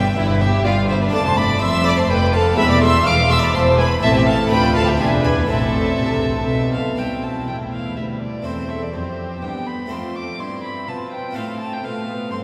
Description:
classical, baroque-style concerto movement with solo episodes; 124 BPM; 3/4; straight; A minor, C major from 7.0 s; A4 = 441 Hz
dark violin; melody; 0.0-12.4 s; B4 to D6; -26 LUFS; equal
rich chamber violin section; melody; 0.0-12.4 s; B4 to F6; -29 LUFS; equal
harpsichord; accompaniment; 0.0-12.4 s; C2 to A4; -30 LUFS; equal
rich chamber double bass section; bass; 0.0-7.0 s; E1 to D2; -24 LUFS; equal
warm chamber cello section; bass; 0.0-12.4 s; C2 to C3; -27 LUFS; equal
dark studio violin section; second line; 0.2-12.4 s; D4 to F5; -26 LUFS; equal
warm chamber viola section; accompaniment; 0.2-12.4 s; G3 to F4; -29 LUFS; equal
wet cathedral reverb, RT60 4.1 s; recorded in a church or concert hall; -19 LUFS; mono
0.0-7.0 A section; 7.0-12.4 B section
0.0 Em/G; 1.1 Dm/F; 2.6 E; 4.0 Am; 4.5 Dm; 5.0 E7; 5.5 Am; 7.0 C; 8.5 C/E; 9.9 F; 11.4 F/A

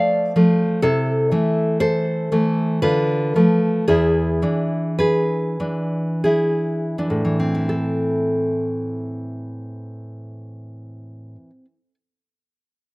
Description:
romantic piece for solo classical guitar; 38-66 BPM; 3/4; rubato; A minor; A4 = 439 Hz
nylon-string guitar; solo; 0.0-11.9 s; E2 to F5; -18 LUFS; equal
little or no reverb; recorded outdoors, with no room sound; -17 LUFS; side -25 dB against mid
0.0-7.7 A section; 7.7-11.7 B section
slowing down 0.0-7.7
0.0 Dm; 0.8 Am/C; 2.8 Bm7b5/D; 3.9 E7; 7.7 Am

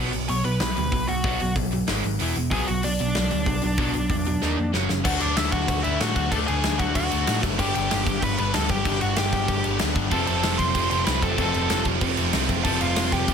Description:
punk rock; 189 BPM; 4/4; straight; A4 = 440 Hz
distorted electric guitar; riff; 0.0-5.0, 10.1-13.3 s; F2 to F#4; -28 LUFS; right 14 dB; distortion
overdriven electric guitar; riff; 0.0-13.3 s; E2 to D#4; -30 LUFS; left 15 dB
overdriven picked electric bass; bass; 0.0-13.3 s; E1 to A2; -28 LUFS; equal
big rock drum kit; drums; 0.1-13.3 s; crash cymbal, hi-hat, kick drum, snare drum; -26 LUFS; right 1 dB
biting lead guitar; melody; 0.3-13.3 s; D4 to C#6; -27 LUFS; equal; overdrive
cranked stack guitar; riff; 5.0-13.3 s; F2 to D4; -30 LUFS; left 1 dB; overdrive
light reverb; -21 LUFS; side -7 dB against mid
0.0-5.1 A section; 5.1-13.3 B section
half time 0.0-5.1; drum fill 4.4-5.1
0.0 B5; 1.9 G#5; 2.2 E5; 2.5 Bm; 4.4 D#5; 4.7 F#5; 5.1 D; 7.6 G; 10.1 F

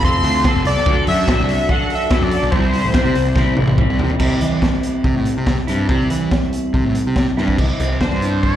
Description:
indie rock; 143 BPM; 4/4; straight; C major; A4 = 435 Hz
pulse-width lead; melody; 0.0-3.8, 8.0-8.6 s; C5 to C6; -21 LUFS; equal; chorus, slapback echo, tape echo
electric guitar through a small old amp; riff; 0.0-8.6 s; E3 to A4; -21 LUFS; equal; double-tracked left and right, slapback echo
fuzz picked electric bass; bass; 0.0-8.6 s; F1 to E3; -19 LUFS; equal; overdrive
raw garage drum kit; drums; 0.0-8.5 s; crash cymbal, hi-hat, kick drum, snare drum, toms; -19 LUFS; equal
little or no reverb; live gig heard through the venue's PA, club reverb; -14 LUFS; side -11 dB against mid
0.0-4.2 A section; 4.2-7.6 B section
drum fill 3.4-4.2, 7.4
0.0 F; 0.9 D; 2.5 C; 7.6 Cadd9

